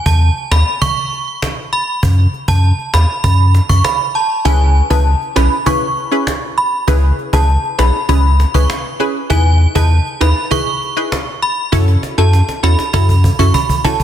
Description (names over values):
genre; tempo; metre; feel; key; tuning
dancehall; 99 BPM; 4/4; straight; C# minor; A4 = 440 Hz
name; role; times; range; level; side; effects
synth chime; melody; 0.1-14.0 s; G#5 to C#6; -18 LUFS; right 2 dB; ensemble chorus, phaser, tape echo
warm sub bass; bass; 0.1-13.5 s; B1 to F#2; -11 LUFS; equal; none
cajon; drums; 0.1-14.0 s; none; -20 LUFS; equal; none
punchy chord stab; accompaniment; 4.4-14.0 s; C#4 to B4; -19 LUFS; equal; chorus
room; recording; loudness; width
little or no reverb; dense, heavily limited modern master; -11 LUFS; side -10 dB against mid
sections
0.0-14.0 A section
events
drum fill 11.7-14.0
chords
0.0 A(#11)/D# (rootless); 2.0 N.C.; 4.5 C#m7; 9.3 Emaj7; 11.7 F#m7